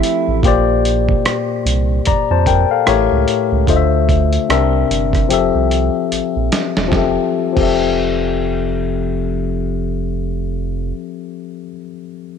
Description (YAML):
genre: R&B, neo-soul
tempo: 74 BPM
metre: 4/4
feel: swing 60% on 16ths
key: F major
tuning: A4 = 441 Hz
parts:
  - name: barky tine electric piano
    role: accompaniment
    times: 0.0-12.4 s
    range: A2 to Bb5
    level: -16 LUFS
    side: left 8 dB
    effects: low-pass filter
  - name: dusty soul sampler-style drum kit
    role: drums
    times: 0.0-7.8 s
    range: crash cymbal, hi-hat, kick drum, rim click, snare drum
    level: -20 LUFS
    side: right 2 dB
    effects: none
  - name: round analog bass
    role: bass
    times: 0.3-10.9 s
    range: E1 to F2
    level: -19 LUFS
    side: right 2 dB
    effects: none
room: light reverb, digital ambience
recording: 1960s-style stereo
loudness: -14 LUFS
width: side -7 dB against mid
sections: 0.0-6.9 A section; 6.9-10.2 B section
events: drum fill 5.3-6.9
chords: 0.4 Bb69; 2.9 A7b9; 3.7 Dm9; 4.5 C7; 5.3 Fmaj9